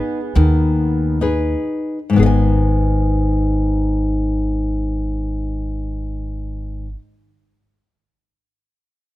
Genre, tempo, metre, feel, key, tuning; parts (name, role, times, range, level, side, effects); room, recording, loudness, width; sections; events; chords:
fado-style ballad; 60-77 BPM; 4/4; rubato; G# minor; A4 = 438 Hz
picked twelve-string acoustic guitar; melody; 0.0-1.2 s; G#4; -36 LUFS; right 3 dB
picked twelve-string acoustic guitar; second line; 0.0-1.2 s; B3; -31 LUFS; right 10 dB
nylon-string guitar; accompaniment; 0.0-7.0 s; G#2 to G#5; -19 LUFS; left 3 dB
upright bass; bass; 0.4-6.9 s; G#1 to D#2; -19 LUFS; equal
little or no reverb; close, detailed microphones; -16 LUFS; side -16 dB against mid
0.0-2.2 A section; 2.2-6.1 B section
slowing down 0.0-2.2
0.0 G#m